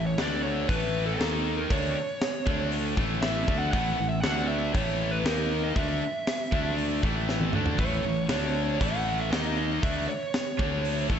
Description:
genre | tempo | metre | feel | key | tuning
hard rock | 118 BPM | 4/4 | straight | unclear | A4 = 440 Hz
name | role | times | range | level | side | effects
biting lead guitar | melody | 0.0-11.1 s | A4 to F#5 | -32 LUFS | right 2 dB | overdrive, slapback echo
high-gain distorted guitar | riff | 0.0-11.2 s | A2 to D#4 | -32 LUFS | left 11 dB | distortion, slapback echo
tight distorted guitar | riff | 0.0-11.2 s | A2 to D#4 | -34 LUFS | right 10 dB | distortion
fuzz fingered electric bass | bass | 0.0-11.2 s | A1 to D#2 | -30 LUFS | equal | overdrive
tight metal drum kit | drums | 0.2-11.2 s | hi-hat, kick drum, snare drum, toms | -30 LUFS | equal | none
room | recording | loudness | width
moderate recital hall reverb, RT60 1.5 s, studio reverb | big arena sound, nothing above 7.9 kHz | -25 LUFS | side -8 dB against mid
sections
0.0-11.2 A section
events
drum fill 7.3-7.8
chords
0.2 D5; 0.7 A5; 1.2 D#5; 1.7 D5; 3.0 A5; 4.2 D5; 4.7 A; 5.3 D#5; 5.8 D5; 7.0 A; 8.3 D5; 8.8 A5; 9.3 D#5; 9.8 D5

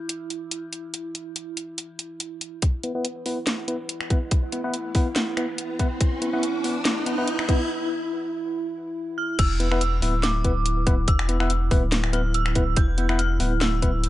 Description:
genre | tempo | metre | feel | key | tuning
deep dubstep | 142 BPM | 4/4 | swing 54% on 16ths, half-time | unclear | A4 = 443 Hz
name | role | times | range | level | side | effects
dark analog pad | sustained chords | 0.0-14.1 s | E4 | -32 LUFS | right 2 dB | chorus
garage drum kit | drums | 0.1-14.1 s | crash cymbal, finger snaps, hi-hat, snare drum | -27 LUFS | equal | none
electronic kick drum | drums | 2.6-13.9 s | none | -21 LUFS | equal | none
riser | sound effects | 4.6-7.7 s | none | -31 LUFS | equal | none
tine electric piano | stabs | 2.8-13.9 s | B3 to B4 | -29 LUFS | left 2 dB | low-pass filter, dub echo
dark detuned synth bell | melody | 9.2-14.1 s | D6 to G6 | -29 LUFS | right 1 dB | chorus, phaser, dub echo
saturated sub bass | bass | 9.4-14.1 s | D1 to E1 | -23 LUFS | equal | none
room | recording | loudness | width
moderate spring reverb, RT60 1.4 s, digital ambience | nothing above 10.7 kHz | -22 LUFS | side -15 dB against mid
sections
0.0-2.6 A section; 2.6-9.4 B section; 9.4-14.1 C section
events
build-up 2.6-9.4; filter sweep on tine electric piano 2.6-9.4; riser 4.6-7.7; break 7.7-9.4; drop 9.4-14.1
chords
0.0 N.C.; 2.6 E5

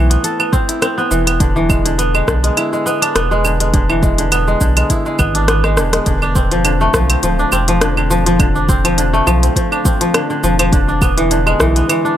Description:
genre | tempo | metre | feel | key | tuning
organic downtempo | 103 BPM | 4/4 | swing 54% on 16ths | unclear | A4 = 440 Hz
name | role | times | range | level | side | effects
kora | arpeggios | 0.0-12.2 s | D3 to A4 | -15 LUFS | equal | vintage 12-bit sampler grit, tape echo
warm sub bass | bass | 0.0-11.8 s | D1 to B1 | -17 LUFS | equal | sidechain pumping
afro-pop drum kit | drums | 0.1-12.2 s | cabasa, claves, hi-hat, rim click | -18 LUFS | right 1 dB | none
electronic kick drum | drums | 0.5-11.7 s | none | -16 LUFS | equal | none
room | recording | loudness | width
light reverb | none | -12 LUFS | side -11 dB against mid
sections
0.0-6.1 A section; 6.1-12.2 B section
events
drum fill 5.6-6.1; band accent 5.9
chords
0.0 Amadd9; 1.4 E7; 6.1 F6; 10.7 E7

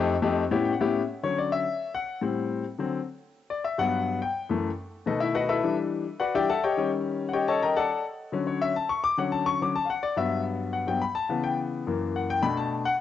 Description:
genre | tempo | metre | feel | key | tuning
jazz | 211 BPM | 4/4 | straight | D major | A4 = 440 Hz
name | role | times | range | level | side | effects
clear concert grand piano | solo | 0.0-12.9 s | F2 to D6 | -25 LUFS | left 4 dB | cassette tape
room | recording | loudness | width
light reverb, small room ambience | home recording on cassette, nothing above 8.0 kHz | -25 LUFS | side -11 dB against mid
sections
0.0-1.1 A section; 1.1-10.2 B section; 10.2-13.0 B section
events
grand piano fill 0.5-1.1; grand piano solo 1.1-13.0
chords
0.0 F9; 0.5 A7; 1.1 Dmaj7; 2.2 Am7; 2.8 D7; 3.4 Gmaj7; 4.5 F#m7; 5.1 B7; 5.6 Em11; 6.8 Eb7#11; 7.9 Dmaj7; 10.2 Gmaj7; 11.3 C#m7b5; 11.9 F#7; 12.4 Bm7

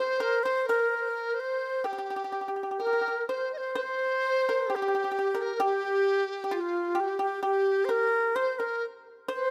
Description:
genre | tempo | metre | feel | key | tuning
chinese traditional, Chinese chamber ensemble | 64 BPM | 2/4 | rubato | G jue mode | A4 = 440 Hz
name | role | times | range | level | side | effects
bright reedy xiao | melody | 0.0-9.5 s | F4 to C5 | -30 LUFS | equal | none
bright reedy large dizi | second line | 0.0-9.5 s | F4 to Eb5 | -35 LUFS | equal | none
pipa | second line | 0.0-9.5 s | F4 to C5 | -36 LUFS | equal | none
room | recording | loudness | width
light reverb | close, detailed microphones | -28 LUFS | mono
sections
0.0-3.7 A section; 3.7-9.5 B section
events
none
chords
none

